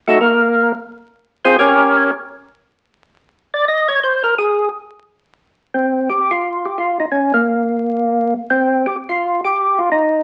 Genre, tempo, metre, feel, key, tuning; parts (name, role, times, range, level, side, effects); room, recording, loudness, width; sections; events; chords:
jazz; 173 BPM; 4/4; swing 63% on 8ths; A4 = 440 Hz
percussive tonewheel organ; solo; 0.1-10.2 s; A3 to Eb5; -16 LUFS; equal; slow rotary speaker, overdrive
wet studio reverb, RT60 0.7 s; very old 78 rpm record, vinyl crackle, nothing above 10.5 kHz; -16 LUFS; mono
0.0-5.7 A section; 5.7-10.2 B section
tonewheel organ solo 0.0-5.7
0.2 Bbsus2; 1.6 Gdim; 2.3 N.C.